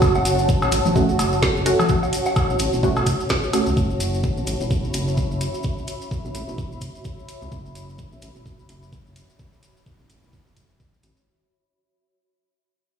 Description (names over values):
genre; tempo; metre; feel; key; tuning
minimal techno; 128 BPM; 4/4; swing 58% on 16ths; F# minor; A4 = 440 Hz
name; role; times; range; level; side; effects
rubbery square bass; bass; 0.0-11.1 s; E1 to C#2; -25 LUFS; equal; tube saturation, sidechain pumping
electronic kick drum; drums; 0.0-10.9 s; none; -23 LUFS; equal; none
cowbell, woodblock and congas; percussion; 0.0-3.6 s; none; -25 LUFS; left 1 dB; tape echo
maracas; percussion; 0.0-11.2 s; none; -34 LUFS; left 2 dB; none
granular cloud pad; texture; 0.0-11.3 s; F#4 to B5; -26 LUFS; equal; built-in reverb, sidechain pumping
garage drum kit; drums; 0.3-11.1 s; hi-hat, snare drum; -26 LUFS; right 1 dB; none
filtered dub chord stab; stabs; 1.0-3.7 s; A3 to F#4; -24 LUFS; right 2 dB; phaser, tape echo
room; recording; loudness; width
light reverb, digital ambience; played on a big sound system in a bare room, stone room reverb, studio reverb; -19 LUFS; side -7 dB against mid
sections
0.0-11.3 A section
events
fade-out on ambient pad 0.0-11.3; fade-out 0.0-11.3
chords
0.0 F#m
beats
| 0.02 0.49 0.96 1.43 | 1.89 2.36 2.83 3.30 | 3.77 4.24 4.71 5.17 | 5.64 6.11 6.58 7.05 | 7.52 7.99 8.46 8.93 | 9.39 9.86 10.33 10.80